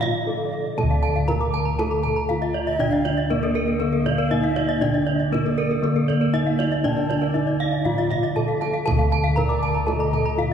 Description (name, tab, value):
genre	Balinese gamelan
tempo	119 BPM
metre	4/4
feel	straight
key	D pelog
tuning	A4 = 439 Hz
part	gamelan-type bronze metallophone	melody	0.0-10.5 s	Bb3 to Bb4	-25 LUFS	equal	none
part	breathy bright bansuri	second line	0.0-10.5 s	D5 to A5	-33 LUFS	right 4 dB	none
part	gamelan-type bronze metallophone	accompaniment	0.0-10.5 s	D3 to Bb3	-30 LUFS	right 4 dB	none
part	gamelan-type bronze metallophone	arpeggios	0.0-10.3 s	Bb4 to A5	-29 LUFS	right 5 dB	none
part	gamelan-type bossed gongs	bass	0.0-10.5 s	D2 to A4	-25 LUFS	left 1 dB	none
part	kendang	percussion	0.0-10.5 s	none	-30 LUFS	right 2 dB	none
part	gamelan-type bronze metallophone	arpeggios	0.8-10.5 s	A4 to D6	-27 LUFS	left 4 dB	none
room	wet church reverb, RT60 2.8 s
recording	recorded in a church or concert hall, lossy compression artefacts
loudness	-19 LUFS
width	side -8 dB against mid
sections	0.0-8.9 A section; 8.9-10.5 A section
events	break 0.0-0.8; drum fill 0.3-0.8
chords	none